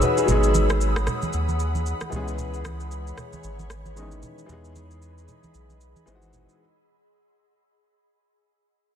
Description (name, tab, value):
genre	amapiano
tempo	114 BPM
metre	4/4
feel	swing 58% on 16ths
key	C# minor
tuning	A4 = 440 Hz
part	warm grand piano	accompaniment	0.0-6.6 s	D#3 to C#5	-27 LUFS	left 2 dB	none
part	ethereal airy pad	sustained chords	0.0-6.6 s	G#4 to E6	-31 LUFS	equal	ensemble chorus, built-in reverb
part	saturated sub bass	bass	0.0-6.5 s	G#1 to E2	-26 LUFS	equal	none
part	electronic shaker and rim click	drums	0.0-6.6 s	none	-33 LUFS	right 1 dB	overdrive, vintage 12-bit sampler grit
part	congas	percussion	0.0-6.5 s	none	-31 LUFS	right 3 dB	none
room	light reverb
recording	dense, heavily limited modern master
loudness	-22 LUFS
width	side -9 dB against mid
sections	0.0-6.6 A section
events	fade-out 0.0-6.6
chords	0.3 G#m7; 2.1 C#m7; 4.5 Emaj7; 6.1 G#7b13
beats	| 0.28 0.81 1.33 1.86 | 2.39 2.91 3.44 3.97 | 4.49 5.02 5.54 6.07